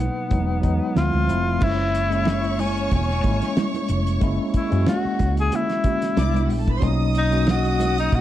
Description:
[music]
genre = lush 1970s-style soul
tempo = 92 BPM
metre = 4/4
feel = swing 54% on 16ths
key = unclear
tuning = A4 = 442 Hz
[part]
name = breathy tenor saxophone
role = melody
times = 0.0-8.2 s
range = B3 to G#4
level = -26 LUFS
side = left 2 dB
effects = none
[part]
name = tine electric piano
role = accompaniment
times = 0.0-8.2 s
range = B2 to F#4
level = -24 LUFS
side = left 1 dB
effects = fast stereo tremolo
[part]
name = hollow-body short-scale fingered electric bass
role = bass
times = 0.0-8.2 s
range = E1 to F#2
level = -23 LUFS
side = equal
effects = none
[part]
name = cloth-damped thuddy drum kit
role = drums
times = 0.3-8.2 s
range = crash cymbal, hi-hat, kick drum, snare drum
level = -25 LUFS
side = equal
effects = none
[part]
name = congas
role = percussion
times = 0.3-8.2 s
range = none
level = -31 LUFS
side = right 6 dB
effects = none
[part]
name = warm studio violin section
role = second line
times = 1.6-8.2 s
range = D4 to D#6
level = -31 LUFS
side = right 1 dB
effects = none
[sound]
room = light reverb, small room ambience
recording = dark, warm production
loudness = -19 LUFS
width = side -12 dB against mid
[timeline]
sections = 0.0-1.6 A section; 1.6-8.2 B section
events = none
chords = 0.3 Emaj7; 1.0 Dm7; 1.6 F#9; 6.2 Cmaj9; 6.8 Bmaj9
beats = 0.31 0.96 | 1.62 2.27 2.92 3.57 | 4.22 4.87 5.52 6.17 | 6.82 7.47 8.12

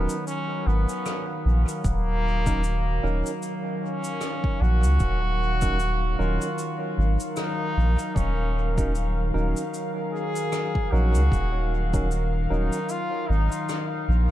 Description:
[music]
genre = ambient dub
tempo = 76 BPM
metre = 4/4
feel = swing 57% on 16ths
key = Eb minor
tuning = A4 = 439 Hz
[part]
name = brilliant trombone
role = melody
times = 0.0-14.1 s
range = Bb3 to Ab4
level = -30 LUFS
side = equal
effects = dub echo
[part]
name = warbly tape-like pad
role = sustained chords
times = 0.0-14.3 s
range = Eb3 to F5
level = -30 LUFS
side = equal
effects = chorus, built-in reverb
[part]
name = barky tine electric piano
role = stabs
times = 0.0-12.8 s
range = Gb3 to Bb4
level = -34 LUFS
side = right 2 dB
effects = dub echo
[part]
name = soft dub sub bass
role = bass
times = 0.0-14.3 s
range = Eb1 to Db2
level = -22 LUFS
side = equal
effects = none
[part]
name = cabasa and rim click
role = drums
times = 0.1-13.9 s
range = none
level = -38 LUFS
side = left 1 dB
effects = dub echo
[part]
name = electronic kick drum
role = drums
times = 1.8-12.1 s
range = none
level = -27 LUFS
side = equal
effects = none
[sound]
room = small room ambience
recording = dark, warm production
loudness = -22 LUFS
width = side -13 dB against mid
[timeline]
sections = 0.0-14.3 A section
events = none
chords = 0.0 Ebm7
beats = 0.27 1.06 | 1.85 2.64 3.42 4.21 | 5.00 5.79 6.58 7.37 | 8.16 8.95 9.74 10.53 | 11.32 12.11 12.90 13.69

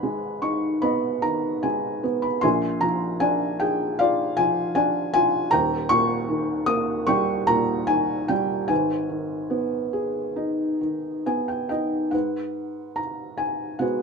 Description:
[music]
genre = classical, lyrical solo piano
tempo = 67-79 BPM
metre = 4/4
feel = rubato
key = G# harmonic minor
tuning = A4 = 439 Hz
[part]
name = felt-muted upright piano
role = solo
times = 0.0-14.0 s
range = D#1 to D#6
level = -22 LUFS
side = equal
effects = none
[sound]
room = light reverb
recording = minimal, uncompressed stereo recording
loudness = -21 LUFS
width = side -5 dB against mid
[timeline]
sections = 0.0-12.1 A section; 12.1-14.0 B section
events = felt piano fill 10.8-12.1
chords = 0.0 G#m; 2.4 A#7; 5.5 D#7; 8.7 G#m; 12.1 G#m7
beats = 0.03 0.82 1.63 | 2.43 3.21 3.99 4.76 | 5.53 6.30 7.09 7.90 | 8.70 9.52 10.38 11.27 | 12.13 12.97 13.81

